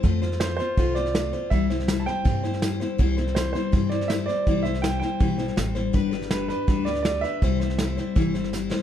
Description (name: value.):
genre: honky-tonk and classic country.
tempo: 162 BPM.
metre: 4/4.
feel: straight.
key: C major.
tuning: A4 = 440 Hz.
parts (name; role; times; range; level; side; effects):
picked steel-string acoustic guitar; accompaniment; 0.0-8.8 s; C3 to C5; -26 LUFS; left 5 dB; none.
upright bass; bass; 0.0-8.7 s; G1 to G2; -29 LUFS; right 1 dB; none.
vintage brush drum kit; drums; 0.0-8.8 s; hi-hat, kick drum, snare drum; -26 LUFS; right 1 dB; none.
bright upright piano; second line; 0.4-8.5 s; B4 to A5; -29 LUFS; right 5 dB; none.
room: moderate large studio reverb, RT60 1.4 s.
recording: dark, warm production.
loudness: -22 LUFS.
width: side -10 dB against mid.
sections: 0.0-8.8 A section.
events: upright piano solo 0.0-8.8; drum fill 8.5.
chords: 0.0 F; 1.5 C; 5.9 G; 7.4 C.